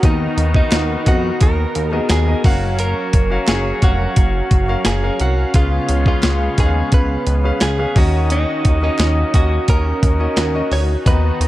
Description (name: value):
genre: 1980s-style pop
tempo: 87 BPM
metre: 4/4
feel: straight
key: Eb minor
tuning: A4 = 440 Hz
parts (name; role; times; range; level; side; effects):
- direct-recorded clean electric guitar; melody; 0.0-11.5 s; D#4 to Db5; -23 LUFS; right 3 dB; none
- clear grand piano; accompaniment; 0.0-11.5 s; Db3 to A#5; -23 LUFS; left 3 dB; none
- brassy analog pad; sustained chords; 0.0-11.5 s; Gb3 to F5; -27 LUFS; right 1 dB; chorus
- clear horn section; stabs; 0.0-11.5 s; Ab3 to A#5; -28 LUFS; left 3 dB; tape echo
- chorused synth bass; bass; 0.0-11.5 s; F1 to F2; -18 LUFS; equal; none
- clean 12-bit digital drum machine; drums; 0.0-11.5 s; hi-hat, kick drum, snare drum; -16 LUFS; equal; none
- group handclap; percussion; 0.7-10.5 s; none; -34 LUFS; right 3 dB; none
room: light reverb, studio reverb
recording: dark, warm production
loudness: -14 LUFS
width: side -16 dB against mid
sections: 0.0-11.5 A section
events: none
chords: 0.0 Bmaj7/D#; 2.4 Gbmaj7; 5.5 Db7; 8.0 Ebm7